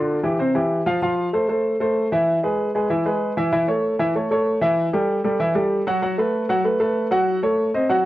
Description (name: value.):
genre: jazz.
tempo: 192 BPM.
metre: 4/4.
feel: straight.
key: A major from 3.5 s.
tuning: A4 = 444 Hz.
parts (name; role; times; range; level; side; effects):
clear grand piano; solo; 0.0-8.0 s; C3 to F#5; -18 LUFS; equal; cassette tape.
room: light reverb.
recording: home recording on cassette.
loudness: -18 LUFS.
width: side -15 dB against mid.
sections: 0.0-3.5 A section; 3.5-8.1 B section.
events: none.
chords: 0.4 C; 1.0 F; 2.3 E; 3.5 A; 4.8 A5; 6.0 F#madd11; 7.3 D#m7b5.